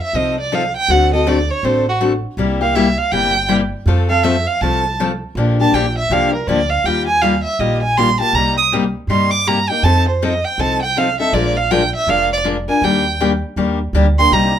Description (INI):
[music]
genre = acoustic string swing (jazz manouche)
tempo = 161 BPM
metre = 4/4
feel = swing 62% on 8ths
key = Bb major, Eb major from 6.8 s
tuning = A4 = 440 Hz
[part]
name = warm violin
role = melody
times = 0.0-14.6 s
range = F#4 to Eb6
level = -16 LUFS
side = right 3 dB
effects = none
[part]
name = picked steel-string acoustic guitar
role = accompaniment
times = 0.1-14.5 s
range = C3 to Bb4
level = -18 LUFS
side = left 4 dB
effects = none
[part]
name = upright bass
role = bass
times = 0.1-14.6 s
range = F1 to G2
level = -20 LUFS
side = right 1 dB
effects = none
[sound]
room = moderate club reverb, RT60 0.7 s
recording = minimal, uncompressed stereo recording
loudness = -14 LUFS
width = side -10 dB against mid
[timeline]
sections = 0.0-6.8 A section; 6.8-14.6 A section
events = violin solo 0.0-14.6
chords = 0.0 F7; 0.9 D7; 2.4 C7; 3.9 F; 5.4 Bb6; 6.8 Ebadd9; 8.3 Cm7; 9.8 F7; 11.3 Bb7; 12.8 Ebmaj7